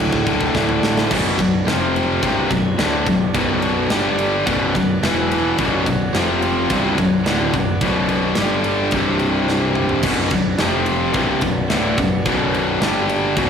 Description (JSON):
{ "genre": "heavy metal", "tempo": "108 BPM", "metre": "4/4", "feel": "straight", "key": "B minor", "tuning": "A4 = 440 Hz", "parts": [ { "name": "pipe organ, full organ", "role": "sustained chords", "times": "0.0-13.5 s", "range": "C3 to F#5", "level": "-26 LUFS", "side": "right 1 dB", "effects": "none" }, { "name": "heavy high-gain guitar", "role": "riff", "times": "0.0-13.5 s", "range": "B1 to G3", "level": "-23 LUFS", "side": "right 6 dB", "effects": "distortion" }, { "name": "tight distorted guitar", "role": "riff", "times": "0.0-13.5 s", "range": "B1 to G3", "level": "-19 LUFS", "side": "left 4 dB", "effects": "distortion" }, { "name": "fuzz picked electric bass", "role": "bass", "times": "0.0-13.5 s", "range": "B0 to A1", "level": "-28 LUFS", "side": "right 1 dB", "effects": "overdrive" }, { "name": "tight metal drum kit", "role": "drums", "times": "0.0-13.5 s", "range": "crash cymbal, kick drum, ride cymbal, snare drum, toms", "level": "-24 LUFS", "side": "right 1 dB", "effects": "none" } ], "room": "moderate cathedral reverb, RT60 7.1 s", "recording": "rough rehearsal-room recording, warm saturation", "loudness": "-16 LUFS", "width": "side -7 dB against mid", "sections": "0.0-1.1 A section; 1.1-10.0 B section; 10.0-13.5 B section", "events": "drum fill 0.5-1.1, 9.5-10.0", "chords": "0.0 D; 1.1 Bm; 1.7 F5; 2.2 Bm; 3.9 G5; 4.5 Bm; 5.0 E5; 5.6 Bm; 6.1 F5; 6.7 Bm; 8.4 G5; 8.9 C5; 10.0 Bm; 10.6 F5; 11.2 Bm; 12.8 G5" }